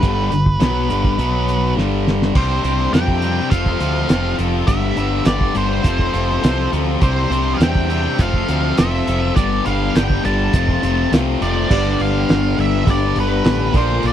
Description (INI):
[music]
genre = classic rock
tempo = 103 BPM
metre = 4/4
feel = straight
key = G mixolydian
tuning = A4 = 440 Hz
[part]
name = octave-fuzz lead guitar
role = melody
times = 0.0-14.1 s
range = B4 to A5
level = -23 LUFS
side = right 1 dB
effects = wah, distortion, slapback echo
[part]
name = cranked stack guitar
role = riff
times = 0.0-14.1 s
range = F2 to A4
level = -21 LUFS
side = left 10 dB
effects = overdrive
[part]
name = tight distorted guitar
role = riff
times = 0.0-14.1 s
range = F2 to C4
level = -24 LUFS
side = right 14 dB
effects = distortion
[part]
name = growling picked electric bass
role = bass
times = 0.0-14.1 s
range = F1 to F2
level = -20 LUFS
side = right 1 dB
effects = overdrive
[part]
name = cloth-damped thuddy drum kit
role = drums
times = 0.0-14.1 s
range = crash cymbal, hi-hat, kick drum, snare drum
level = -17 LUFS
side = right 1 dB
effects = none
[part]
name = dark grand piano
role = accompaniment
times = 11.7-14.1 s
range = F4 to D5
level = -26 LUFS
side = right 15 dB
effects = none
[part]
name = phased string machine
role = sustained chords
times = 11.7-14.1 s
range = Bb3 to D5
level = -30 LUFS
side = equal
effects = none
[sound]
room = little or no reverb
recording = dry, close 1970s-style studio recording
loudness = -15 LUFS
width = side -10 dB against mid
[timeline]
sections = 0.0-2.4 A section; 2.4-11.7 B section; 11.7-14.1 C section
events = drum fill 1.8-2.4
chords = 0.0 G; 1.2 B5; 1.8 G5; 2.4 Csus2; 3.5 F; 4.7 G; 5.9 F; 7.0 Csus2; 8.2 F; 9.4 G; 10.5 F; 11.7 G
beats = | 0.04 0.61 1.20 1.77 | 2.36 2.94 3.52 4.10 | 4.68 5.27 5.85 6.44 | 7.02 7.61 8.19 8.78 | 9.36 9.95 10.53 11.12 | 11.70 12.29 12.87 13.45 | 14.03